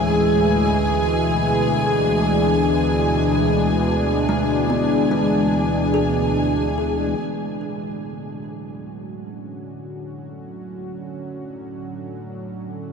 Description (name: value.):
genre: ambient.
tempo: 74 BPM.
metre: 4/4.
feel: straight.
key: D lydian.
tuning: A4 = 440 Hz.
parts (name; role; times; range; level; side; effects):
warm analog pad; sustained chords; 0.0-12.9 s; D2 to G#4; -20 LUFS; equal; chorus.
kalimba; arpeggios; 0.0-7.8 s; G#3 to E6; -28 LUFS; right 1 dB; ping-pong delay.
rich studio violin section; texture; 0.0-7.2 s; G#4 to G#5; -26 LUFS; left 1 dB; none.
room: wet huge ambient reverb, RT60 8.2 s.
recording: dreamy mix soaked in reverb.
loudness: -17 LUFS.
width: side -6 dB against mid.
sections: 0.0-7.2 A section; 7.2-12.9 B section.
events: fade-in on analog synth pad 7.2-12.9.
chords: 0.0 Amaj7/D; 0.6 E7/D; 7.2 Dmaj7.